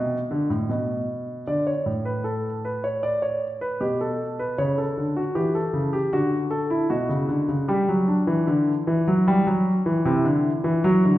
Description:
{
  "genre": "classical, baroque-style two-part invention for grand piano",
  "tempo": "77 BPM",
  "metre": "4/4",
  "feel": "straight",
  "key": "unclear",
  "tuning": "A4 = 441 Hz",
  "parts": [
    { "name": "warm concert grand piano", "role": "solo", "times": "0.0-11.2 s", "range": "A2 to D5", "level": "-21 LUFS", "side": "equal", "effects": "none" }
  ],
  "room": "wet recital hall reverb, RT60 1.6 s",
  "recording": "heard from further back in the room",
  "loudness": "-21 LUFS",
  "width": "side -15 dB against mid",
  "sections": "0.0-11.2 A section",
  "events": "none",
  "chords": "0.0 N.C.; 1.5 D5; 3.0 A9; 4.6 A7/C#; 6.1 D; 7.7 G5; 9.3 Cadd9",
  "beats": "0.70 | 1.48 2.25 3.03 3.81 | 4.59 5.36 6.13 6.91 | 7.69 8.48 9.27 10.05 | 10.84"
}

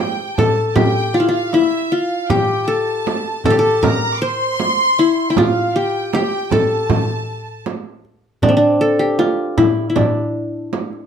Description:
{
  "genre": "Arabic maqam ensemble",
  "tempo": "78 BPM",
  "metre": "4/4",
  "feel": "straight",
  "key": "A maqam kurd",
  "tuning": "A4 = 440 Hz",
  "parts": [
    { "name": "qanun", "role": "melody", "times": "0.0-11.1 s", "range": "C4 to C5", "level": "-16 LUFS", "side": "left 2 dB", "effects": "none" },
    { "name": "bright studio violin section", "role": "second line", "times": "0.0-7.7 s", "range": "E5 to D6", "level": "-22 LUFS", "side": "right 1 dB", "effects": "none" },
    { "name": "darbuka", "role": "percussion", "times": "0.0-11.0 s", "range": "none", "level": "-23 LUFS", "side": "left 2 dB", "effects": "none" },
    { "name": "frame drum", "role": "percussion", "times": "0.0-10.9 s", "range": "none", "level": "-20 LUFS", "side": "right 5 dB", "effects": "none" }
  ],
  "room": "moderate studio reverb, RT60 0.6 s",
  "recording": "dark, warm production",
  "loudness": "-14 LUFS",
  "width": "side -7 dB against mid",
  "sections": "0.0-8.4 A section; 8.4-11.1 B section",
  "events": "none",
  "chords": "none",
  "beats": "0.00 0.77 1.53 | 2.30 3.06 3.83 4.60 | 5.36 6.13 6.89 7.66 | 8.43 9.19 9.96 10.73"
}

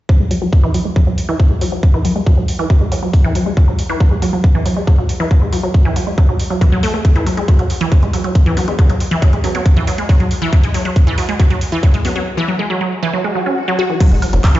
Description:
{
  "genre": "psychedelic trance",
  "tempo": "138 BPM",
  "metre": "4/4",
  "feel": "straight",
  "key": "unclear",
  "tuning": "A4 = 440 Hz",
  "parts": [
    { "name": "wide unison pluck", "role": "riff", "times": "0.1-14.6 s", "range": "E3 to F#4", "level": "-18 LUFS", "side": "equal", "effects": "auto-pan, sidechain pumping, dub echo" },
    { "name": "electronic kick drum", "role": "drums", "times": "0.1-14.5 s", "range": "none", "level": "-11 LUFS", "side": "equal", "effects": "none" },
    { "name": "techno drum kit", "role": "drums", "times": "0.3-14.6 s", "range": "crash cymbal, handclaps, hi-hat, woodblock", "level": "-29 LUFS", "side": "right 1 dB", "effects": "overdrive" },
    { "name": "formant-sweep wobble bass", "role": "second line", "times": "8.6-12.2 s", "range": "B3", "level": "-30 LUFS", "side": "right 1 dB", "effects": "chorus, sidechain pumping, high-pass filter, digital delay" },
    { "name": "swell", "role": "sound effects", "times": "13.3-14.0 s", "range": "none", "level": "-24 LUFS", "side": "right 2 dB", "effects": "none" },
    { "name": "granular cloud pad", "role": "texture", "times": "14.4-14.6 s", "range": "C#4", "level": "-36 LUFS", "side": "right 1 dB", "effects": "none" },
    { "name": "tight sequencer bass", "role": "bass", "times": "14.1-14.4 s", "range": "F#1", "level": "-13 LUFS", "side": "equal", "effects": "none" }
  ],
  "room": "light reverb",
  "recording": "played on a big sound system in a bare room, stone room reverb, nothing above 7.7 kHz",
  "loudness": "-12 LUFS",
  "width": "side -15 dB against mid",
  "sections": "0.1-14.0 A section",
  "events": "filter sweep on synth arpeggio sound 0.1-14.0; break 12.3-14.0; swell 13.3-14.0",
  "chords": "0.1 F#5",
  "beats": "| 0.09 0.53 0.96 1.40 | 1.83 2.27 2.70 3.13 | 3.57 4.00 4.44 4.87 | 5.31 5.74 6.18 6.61 | 7.05 7.48 7.92 8.35 | 8.79 9.22 9.66 10.09 | 10.53 10.96 11.40 11.83 | 12.27 12.70 13.13 13.57 | 14.00 14.44"
}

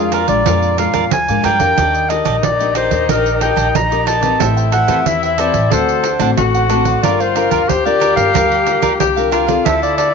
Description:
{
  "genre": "samba and choro",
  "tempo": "91 BPM",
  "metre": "4/4",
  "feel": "straight",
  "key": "unclear",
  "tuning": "A4 = 438 Hz",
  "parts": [
    { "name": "warm clarinet", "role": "melody", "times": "0.0-10.1 s", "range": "Ab4 to Bb5", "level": "-17 LUFS", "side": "equal", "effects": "none" },
    { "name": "warm tenor saxophone", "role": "second line", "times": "0.0-10.1 s", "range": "Eb4 to A4", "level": "-19 LUFS", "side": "left 9 dB", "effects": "none" },
    { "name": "cavaquinho", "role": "accompaniment", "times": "0.0-10.1 s", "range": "D4 to G5", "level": "-21 LUFS", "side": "right 13 dB", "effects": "none" },
    { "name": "nylon-string guitar", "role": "accompaniment", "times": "0.0-10.1 s", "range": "A2 to B4", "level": "-21 LUFS", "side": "left 10 dB", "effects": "none" },
    { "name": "upright bass", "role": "bass", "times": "0.0-10.1 s", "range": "G1 to Ab2", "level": "-21 LUFS", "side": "right 1 dB", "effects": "none" },
    { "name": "pandeiro", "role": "percussion", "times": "0.1-10.1 s", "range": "none", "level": "-21 LUFS", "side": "right 13 dB", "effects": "none" }
  ],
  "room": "moderate echo chamber reverb, RT60 1.9 s",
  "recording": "1960s-style stereo with parts hard left and right, nothing above 7.8 kHz",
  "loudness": "-12 LUFS",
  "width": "side -5 dB against mid",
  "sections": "0.0-10.1 A section",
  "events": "none",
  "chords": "0.0 Bb7; 1.8 Ebmaj7; 4.4 Am9; 5.7 D7; 7.0 Gm7",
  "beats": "0.47 1.12 | 1.78 2.44 3.09 3.75 | 4.41 5.06 5.72 6.38 | 7.03 7.69 8.35 9.00 | 9.66"
}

